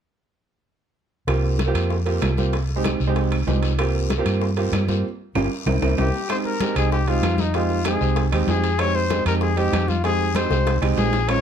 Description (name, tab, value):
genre	Afro-Cuban jazz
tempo	192 BPM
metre	4/4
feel	straight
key	F minor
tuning	A4 = 436 Hz
part	warm concert grand piano	accompaniment	1.3-11.4 s	Ab3 to G4	-24 LUFS	right 5 dB	none
part	hollow-body short-scale fingered electric bass	bass	1.3-11.4 s	G1 to G2	-22 LUFS	equal	none
part	bongos	percussion	1.3-11.4 s	none	-32 LUFS	left 7 dB	none
part	claves	percussion	1.3-11.4 s	none	-36 LUFS	right 5 dB	none
part	congas	percussion	1.3-11.4 s	none	-30 LUFS	left 4 dB	none
part	guiro	percussion	1.3-11.4 s	none	-36 LUFS	left 9 dB	none
part	timbales	percussion	1.3-11.4 s	none	-31 LUFS	right 5 dB	none
part	clear trumpet	melody	6.0-11.4 s	Eb4 to Db5	-24 LUFS	left 6 dB	none
room	light reverb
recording	dark, warm production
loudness	-19 LUFS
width	side -8 dB against mid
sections	1.3-6.3 A section; 6.3-11.4 B section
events	band accent 5.0-6.3; drum fill 5.8-6.3, 10.5-11.3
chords	1.3 C7sus4; 2.5 Abmaj7/C; 3.8 C7sus4; 5.0 Db; 5.7 C7; 6.3 Fm7